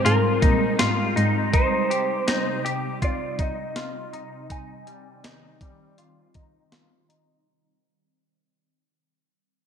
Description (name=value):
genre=dream pop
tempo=81 BPM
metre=4/4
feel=straight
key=Ab major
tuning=A4 = 440 Hz
part: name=electric slide guitar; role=melody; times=0.0-6.7 s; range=Bb4 to Ab5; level=-28 LUFS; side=right 1 dB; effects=low-pass filter, digital delay
part: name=ethereal airy pad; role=sustained chords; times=0.0-7.4 s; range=C3 to Eb4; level=-28 LUFS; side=right 1 dB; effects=ensemble chorus, built-in reverb, low-pass filter
part: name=semi-hollow electric guitar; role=arpeggios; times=0.0-7.5 s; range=G3 to G4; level=-27 LUFS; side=left 3 dB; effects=ensemble chorus, low-pass filter, digital delay
part: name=rich cello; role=bass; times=0.1-1.5 s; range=Ab2 to Bb2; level=-24 LUFS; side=equal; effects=none
part: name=crisp 8-bit digital drum machine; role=drums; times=0.1-7.3 s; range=hi-hat, kick drum, snare drum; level=-25 LUFS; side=equal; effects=gated reverb
room=moderate plate reverb, RT60 2.5 s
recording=bright 1980s-style digital production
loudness=-20 LUFS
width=side -7 dB against mid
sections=0.0-7.5 A section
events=fade-out 0.0-7.5; filter sweep 0.0-7.5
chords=0.0 Abmaj7; 1.5 Cm; 4.5 Abmaj7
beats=0.05 0.79 | 1.53 2.27 3.02 3.76 | 4.50 5.24 5.98 6.72